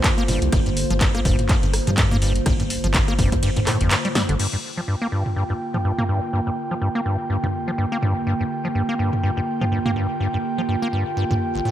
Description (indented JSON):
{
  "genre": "acid house",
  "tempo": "124 BPM",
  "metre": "4/4",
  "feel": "swing 57% on 16ths",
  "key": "G minor",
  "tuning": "A4 = 441 Hz",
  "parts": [
    { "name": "warbly tape-like pad", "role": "sustained chords", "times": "0.0-11.7 s", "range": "D3 to C5", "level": "-28 LUFS", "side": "right 1 dB", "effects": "chorus, built-in reverb, sidechain pumping" },
    { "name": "acid bass, square", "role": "riff", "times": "0.0-11.7 s", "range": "G1 to Bb3", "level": "-24 LUFS", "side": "equal", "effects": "sidechain pumping, ping-pong delay" },
    { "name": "electro analog drum machine", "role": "drums", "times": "0.0-11.4 s", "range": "crash cymbal, handclaps, hi-hat, ride cymbal, rim click, snare drum, toms", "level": "-24 LUFS", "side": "equal", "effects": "studio reverb" },
    { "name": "electronic kick drum", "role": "drums", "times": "0.0-3.4 s", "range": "none", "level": "-21 LUFS", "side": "equal", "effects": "overdrive, studio reverb" },
    { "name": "round analog bass", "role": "bass", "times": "0.3-4.4 s", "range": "F1 to G2", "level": "-23 LUFS", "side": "equal", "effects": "sidechain pumping" },
    { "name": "airy breathy pad", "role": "texture", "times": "4.7-11.7 s", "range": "Bb3 to G5", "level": "-27 LUFS", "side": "right 1 dB", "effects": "chorus, sidechain pumping" }
  ],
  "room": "light reverb, digital ambience",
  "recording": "none",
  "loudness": "-19 LUFS",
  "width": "side -12 dB against mid",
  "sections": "0.0-4.4 A section; 4.4-11.7 B section",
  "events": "drop 0.0-4.4; kick drops out 3.4-4.4; drum fill 4.2; filter sweep on ambient pad 4.4-11.7",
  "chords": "0.0 Gm7"
}